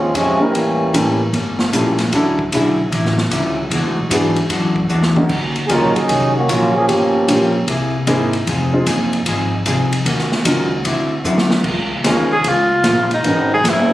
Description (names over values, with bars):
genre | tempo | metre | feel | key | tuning
jazz, big band swing | 151 BPM | 4/4 | swing 65% on 8ths | Db major | A4 = 440 Hz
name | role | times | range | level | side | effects
clear trombone section | second line | 0.0-1.3, 5.7-7.7 s | C3 to Bb4 | -16 LUFS | right 1 dB | none
vintage hollow-body jazz guitar | accompaniment | 0.0-13.9 s | G2 to G#4 | -22 LUFS | left 1 dB | none
upright bass | bass | 0.0-13.9 s | F1 to G#2 | -21 LUFS | equal | none
swinging big-band drum kit | drums | 0.1-13.8 s | crash cymbal, hi-hat, kick drum, ride cymbal, snare drum, toms | -21 LUFS | equal | none
warm baby grand piano | accompaniment | 0.4-13.9 s | F#3 to Bb4 | -18 LUFS | equal | none
clear trombone section | sustained chords | 12.0-13.9 s | F3 to Ab4 | -22 LUFS | left 1 dB | none
clear alto saxophone | melody | 12.3-13.9 s | Eb4 to Ab4 | -15 LUFS | equal | none
room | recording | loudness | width
light reverb | recorded on a phone in the room, club reverb | -14 LUFS | side -15 dB against mid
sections
0.0-11.7 A section; 11.7-13.9 B section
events
trombone section solo 0.0-11.7; drum fill 4.9-5.3, 11.3-11.7; alto saxophone solo 11.7-13.9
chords
0.0 Bbm11; 0.5 A7b9; 2.1 Dmaj9; 3.7 E9; 5.3 Ebm7; 6.9 Gm7b5; 7.7 C7alt; 8.5 Fm7; 10.1 Ebm7; 10.9 D9; 11.7 Db6; 13.2 Abm11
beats
0.14 | 0.54 0.94 1.33 1.73 | 2.13 2.52 2.92 3.32 | 3.71 4.11 4.50 4.90 | 5.30 5.69 6.09 6.49 | 6.88 7.28 7.68 8.07 | 8.47 8.87 9.27 9.66 | 10.06 10.46 10.86 11.26 | 11.65 12.05 12.45 12.85 | 13.25 13.65